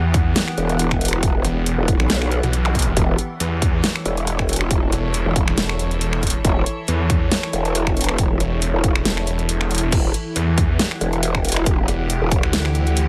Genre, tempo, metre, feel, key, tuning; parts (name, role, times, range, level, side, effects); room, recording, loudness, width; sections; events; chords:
heavy wobble dubstep; 138 BPM; 4/4; swing 54% on 16ths, half-time; E dorian; A4 = 440 Hz
evolving wavetable pad; sustained chords; 0.0-13.1 s; E3 to F#5; -30 LUFS; equal; chorus, built-in reverb, sidechain pumping
snarling distorted saw bass; bass; 0.0-13.1 s; E1 to E2; -23 LUFS; equal; distortion, overdrive
dubstep drum kit; drums; 0.1-13.1 s; crash cymbal, finger snaps, hi-hat, snare drum; -26 LUFS; equal
electronic kick drum; drums; 0.1-12.4 s; -23 LUFS; equal
growl bass; bass; 0.6-12.4 s; E1 to B1; -23 LUFS; equal; chorus, overdrive
zap; sound effects; 2.7-2.8 s; -31 LUFS; equal
little or no reverb; lossy compression artefacts; -20 LUFS; mono
0.0-13.1 A section
kick drops out 9.5-9.9
0.0 Emadd9; 3.0 A/E; 9.9 Emadd9